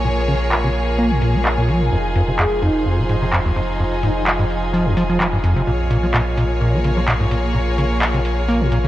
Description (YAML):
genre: acid house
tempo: 128 BPM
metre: 4/4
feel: swing 54% on 16ths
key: unclear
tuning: A4 = 442 Hz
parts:
  - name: rich studio string section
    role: sustained chords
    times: 0.0-8.9 s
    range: F3 to Db5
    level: -25 LUFS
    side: left 1 dB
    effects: none
  - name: deep acid bass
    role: riff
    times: 0.0-8.9 s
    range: Eb2 to Bb3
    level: -20 LUFS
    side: equal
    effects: overdrive, tape echo
  - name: saturated sub bass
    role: bass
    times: 0.0-8.9 s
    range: F1 to Bb1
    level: -22 LUFS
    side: equal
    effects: tube saturation
  - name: airy breathy pad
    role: texture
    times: 0.0-8.9 s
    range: F4 to Ab5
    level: -24 LUFS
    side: equal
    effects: chorus
  - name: electro analog drum machine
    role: drums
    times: 0.3-8.8 s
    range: handclaps, hi-hat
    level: -23 LUFS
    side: equal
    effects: low-pass filter on hats, small room reverb, low-pass filter on snare
  - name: breathy flute-like synth lead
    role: melody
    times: 2.4-4.2 s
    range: Eb4 to Ab4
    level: -25 LUFS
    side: equal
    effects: wide subtle chorus, tape echo
room: light reverb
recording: none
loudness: -16 LUFS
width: side -14 dB against mid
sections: 0.0-8.9 A section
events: filter sweep on acid bass 0.0-8.9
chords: 0.0 Bbm7; 1.9 Fm7; 5.7 Bbm7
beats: | 0.05 0.52 0.98 1.45 | 1.92 2.39 2.86 3.33 | 3.80 4.27 4.74 5.20 | 5.67 6.14 6.61 7.08 | 7.55 8.02 8.48